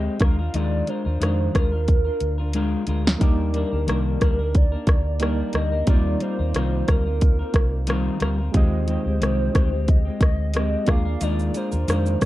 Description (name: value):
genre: indie pop, bedroom pop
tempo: 90 BPM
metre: 4/4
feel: swing 55% on 16ths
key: Eb major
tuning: A4 = 440 Hz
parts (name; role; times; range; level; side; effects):
- warbly nostalgic lead; melody; 0.0-12.3 s; Bb4 to F5; -30 LUFS; right 1 dB; wide subtle chorus, tape echo, plate reverb
- semi-hollow electric guitar; accompaniment; 0.0-12.3 s; Eb3 to Bb4; -27 LUFS; left 3 dB; wide subtle chorus, warbly pitch drift
- vintage muted fingered electric bass; bass; 0.0-12.3 s; C2 to F2; -24 LUFS; equal; none
- house drum kit; drums; 0.2-12.3 s; hi-hat, kick drum, rim click, shaker, snare drum; -19 LUFS; equal; none
- soft electric-piano-like synth keys; accompaniment; 3.2-12.3 s; Ab3 to Eb5; -32 LUFS; right 4 dB; chorus, tremolo, plate reverb
room: light reverb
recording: dark, warm production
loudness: -19 LUFS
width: side -16 dB against mid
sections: 0.0-12.3 A section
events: drum fill 1.9-3.2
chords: 0.2 Bb7/Eb; 3.2 Ebmaj7; 5.9 Cm11; 8.5 Fm9; 10.9 Bb7/Eb